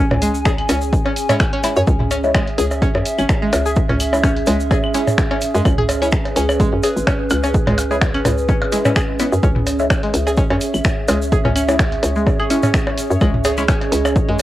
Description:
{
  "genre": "minimal techno",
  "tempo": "127 BPM",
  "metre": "4/4",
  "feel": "swing 55% on 16ths",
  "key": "C# minor",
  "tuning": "A4 = 442 Hz",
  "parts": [
    { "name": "string-like resonator pluck", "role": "riff", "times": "0.0-14.4 s", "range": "G#3 to C#5", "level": "-22 LUFS", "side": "equal", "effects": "chorus, phaser, cassette tape, sidechain pumping, analog delay" },
    { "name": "hollow knocking FM bass", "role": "bass", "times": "0.0-14.4 s", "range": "G#1 to F#2", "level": "-21 LUFS", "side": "equal", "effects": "sidechain pumping" },
    { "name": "warbly tape-like pad", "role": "texture", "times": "0.0-14.4 s", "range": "C#4 to G#5", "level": "-22 LUFS", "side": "right 2 dB", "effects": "chorus, built-in reverb, sidechain pumping, cassette tape" },
    { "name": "electronic toms, percussion blips and claves", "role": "percussion", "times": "0.1-14.4 s", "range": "none", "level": "-22 LUFS", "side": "equal", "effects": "overdrive, cassette tape, analog delay" },
    { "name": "punchy analog drum machine", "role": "drums", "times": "0.2-14.4 s", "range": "finger snaps, hi-hat", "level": "-24 LUFS", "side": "equal", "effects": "overdrive, cassette tape" },
    { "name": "tube shaker", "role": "percussion", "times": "0.2-14.4 s", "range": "none", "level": "-32 LUFS", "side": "right 1 dB", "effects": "none" },
    { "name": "electronic kick drum", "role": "drums", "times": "0.5-14.3 s", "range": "none", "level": "-18 LUFS", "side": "equal", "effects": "cassette tape" },
    { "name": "filtered dub chord stab", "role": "stabs", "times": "1.3-13.6 s", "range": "G#3 to E4", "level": "-24 LUFS", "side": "left 2 dB", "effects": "phaser, cassette tape, analog delay" },
    { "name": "pulsing gated texture", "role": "texture", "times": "9.6-14.4 s", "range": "C#4 to C#5", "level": "-33 LUFS", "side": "left 2 dB", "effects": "none" }
  ],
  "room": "light reverb, digital ambience",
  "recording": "home recording on cassette",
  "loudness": "-14 LUFS",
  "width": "side -14 dB against mid",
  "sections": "0.0-14.4 A section",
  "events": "none",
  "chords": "0.0 C#m"
}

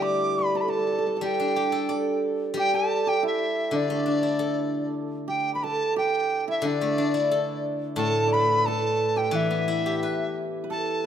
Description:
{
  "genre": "chinese traditional, Chinese chamber ensemble",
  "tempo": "88 BPM",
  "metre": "2/4",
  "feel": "rubato",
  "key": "D zhi mode",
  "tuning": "A4 = 440 Hz",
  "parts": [
    { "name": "large dizi", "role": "melody", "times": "0.0-11.1 s", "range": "D5 to D6", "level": "-27 LUFS", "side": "equal", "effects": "none" },
    { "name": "hammered dulcimer", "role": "second line", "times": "0.0-11.1 s", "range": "D4 to D5", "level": "-28 LUFS", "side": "right 5 dB", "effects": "none" },
    { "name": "steel-string zither", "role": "accompaniment", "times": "0.0-11.1 s", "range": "A2 to D5", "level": "-27 LUFS", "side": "left 3 dB", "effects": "none" }
  ],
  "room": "light reverb",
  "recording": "close, detailed microphones",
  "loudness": "-23 LUFS",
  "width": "side -9 dB against mid",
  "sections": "0.0-5.3 A section; 5.3-11.1 B section",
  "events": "none",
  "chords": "none"
}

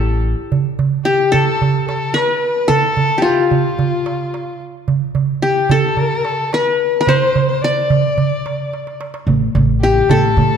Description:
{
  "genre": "Arabic maqam ensemble",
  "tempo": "110 BPM",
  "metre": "4/4",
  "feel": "straight",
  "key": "A maqam bayati",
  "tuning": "A4 = 442 Hz",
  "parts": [
    { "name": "qanun", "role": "melody", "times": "0.0-10.6 s", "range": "E4 to D5", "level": "-17 LUFS", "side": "left 2 dB", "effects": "none" },
    { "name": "dark violin", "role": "second line", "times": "0.0-10.6 s", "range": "E4 to D5", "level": "-20 LUFS", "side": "left 4 dB", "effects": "none" },
    { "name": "upright bass", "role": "bass", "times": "0.0-0.3, 9.3-10.6 s", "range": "A1 to A2", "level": "-16 LUFS", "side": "left 1 dB", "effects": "none" },
    { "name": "darbuka", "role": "percussion", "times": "0.5-10.5 s", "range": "none", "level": "-18 LUFS", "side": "right 6 dB", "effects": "none" }
  ],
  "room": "wet scoring stage reverb, RT60 1.8 s",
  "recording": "dark, warm production",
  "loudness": "-13 LUFS",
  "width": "side -7 dB against mid",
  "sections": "0.5-10.6 A section",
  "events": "drum fill 8.7-9.3",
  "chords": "none"
}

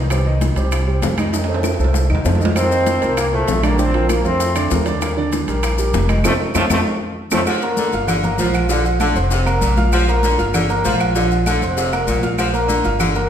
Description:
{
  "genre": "latin, salsa",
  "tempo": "196 BPM",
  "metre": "4/4",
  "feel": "straight",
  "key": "unclear",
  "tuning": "A4 = 441 Hz",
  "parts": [
    { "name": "clear upright piano", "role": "accompaniment", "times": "0.0-13.3 s", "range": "Bb2 to F6", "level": "-21 LUFS", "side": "right 2 dB", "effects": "none" },
    { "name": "upright bass", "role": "bass", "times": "0.0-13.3 s", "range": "F1 to F2", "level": "-20 LUFS", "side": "equal", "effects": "none" },
    { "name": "bongos and cowbell", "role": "percussion", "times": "0.1-13.2 s", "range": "none", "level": "-27 LUFS", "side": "left 4 dB", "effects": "none" },
    { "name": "claves", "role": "percussion", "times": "0.1-13.2 s", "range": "none", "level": "-31 LUFS", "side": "right 3 dB", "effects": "none" },
    { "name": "congas", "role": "percussion", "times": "0.1-13.3 s", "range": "none", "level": "-26 LUFS", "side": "left 2 dB", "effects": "none" },
    { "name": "maracas", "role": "percussion", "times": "0.1-13.3 s", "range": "none", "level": "-31 LUFS", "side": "left 6 dB", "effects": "none" },
    { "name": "timbales and agogo bells", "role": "percussion", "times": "0.1-13.3 s", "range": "none", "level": "-26 LUFS", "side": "right 3 dB", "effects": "none" },
    { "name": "bright trombone section", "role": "melody", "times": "2.6-7.4 s", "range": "F3 to C4", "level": "-20 LUFS", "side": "equal", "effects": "none" },
    { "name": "clear saxophone section", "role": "second line", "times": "7.5-13.2 s", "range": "Bb2 to F3", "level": "-22 LUFS", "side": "left 2 dB", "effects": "none" }
  ],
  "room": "wet recital hall reverb, RT60 1.3 s",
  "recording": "recorded in a church or concert hall",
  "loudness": "-15 LUFS",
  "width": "side -9 dB against mid",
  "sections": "0.0-7.5 A section; 7.5-13.3 B section",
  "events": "drum fill 1.3-2.6, 6.7-7.5; band accent 6.2-7.5",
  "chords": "0.1 Cm; 1.3 F7; 2.6 F7sus4; 5.0 Ebmaj7; 6.2 F7; 7.5 Gm7; 8.7 Bbmaj7; 9.3 Fsus4; 9.9 Gm7; 11.2 Bbmaj7; 11.8 Fsus4; 12.4 Gm7"
}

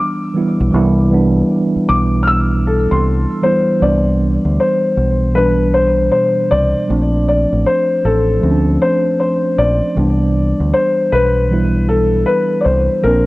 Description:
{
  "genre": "hip hop",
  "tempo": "78 BPM",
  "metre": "4/4",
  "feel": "swing 64% on 16ths",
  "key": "C major",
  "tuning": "A4 = 439 Hz",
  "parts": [
    { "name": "felt-muted upright piano", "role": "melody", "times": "0.0-13.3 s", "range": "A4 to F6", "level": "-16 LUFS", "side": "left 2 dB", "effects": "low-pass filter" },
    { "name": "mellow tine electric piano", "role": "accompaniment", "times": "0.0-13.3 s", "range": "B2 to E4", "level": "-16 LUFS", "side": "right 1 dB", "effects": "slow stereo tremolo, low-pass filter" },
    { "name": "deep dub fingered electric bass", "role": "bass", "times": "0.6-13.3 s", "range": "A1 to D2", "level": "-16 LUFS", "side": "equal", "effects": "none" }
  ],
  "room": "moderate spring reverb, RT60 2.5 s",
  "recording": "worn, warbling old tape, cassette tape, warbly pitch drift",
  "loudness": "-12 LUFS",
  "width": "side -20 dB against mid",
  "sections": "0.0-3.8 A section; 3.8-13.3 B section",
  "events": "none",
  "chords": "0.0 Cmaj9; 6.9 Bbmaj9; 10.0 Cmaj9"
}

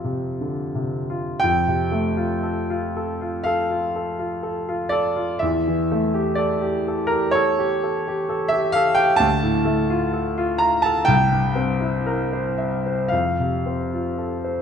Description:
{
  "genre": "classical, romantic nocturne for solo piano",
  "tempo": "62 BPM",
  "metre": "4/4",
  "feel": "uneven beats, rubato",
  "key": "F major",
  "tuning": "A4 = 437 Hz",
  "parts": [
    { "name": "clear concert grand piano", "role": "solo", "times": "0.0-14.6 s", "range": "C2 to Bb5", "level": "-19 LUFS", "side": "equal", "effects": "none" }
  ],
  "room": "wet recital hall reverb, RT60 1.7 s",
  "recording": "none",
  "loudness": "-19 LUFS",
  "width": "side -7 dB against mid",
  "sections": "0.0-1.4 A section; 1.4-14.6 A section",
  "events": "none",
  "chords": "0.0 F5; 1.4 F; 5.4 A7/E; 9.2 Dm; 11.1 C7; 13.1 F"
}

